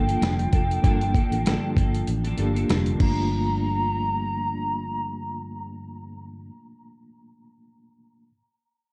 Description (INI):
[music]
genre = indie pop, bedroom pop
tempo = 97 BPM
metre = 4/4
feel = swing 55% on 16ths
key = G minor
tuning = A4 = 440 Hz
[part]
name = warbly nostalgic lead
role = melody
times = 0.0-6.2 s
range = G5 to Bb5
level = -32 LUFS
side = equal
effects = lush chorus, analog delay, plate reverb
[part]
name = clean electric guitar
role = accompaniment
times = 0.0-6.5 s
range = G2 to A4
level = -33 LUFS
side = equal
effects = ensemble chorus, warbly pitch drift
[part]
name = mellow reed electric piano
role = accompaniment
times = 0.0-8.3 s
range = A3 to A4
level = -33 LUFS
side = equal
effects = fast tremolo, cassette tape
[part]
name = vintage muted fingered electric bass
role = bass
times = 0.0-6.1 s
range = F1 to A1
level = -30 LUFS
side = equal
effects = none
[part]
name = dusty soul sampler-style drum kit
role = drums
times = 0.1-3.2 s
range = crash cymbal, hi-hat, kick drum, snare drum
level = -26 LUFS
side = equal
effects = none
[sound]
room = light reverb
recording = dark, warm production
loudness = -24 LUFS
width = mono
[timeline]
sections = 0.0-3.3 A section; 3.3-5.8 B section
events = none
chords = 0.0 Gm9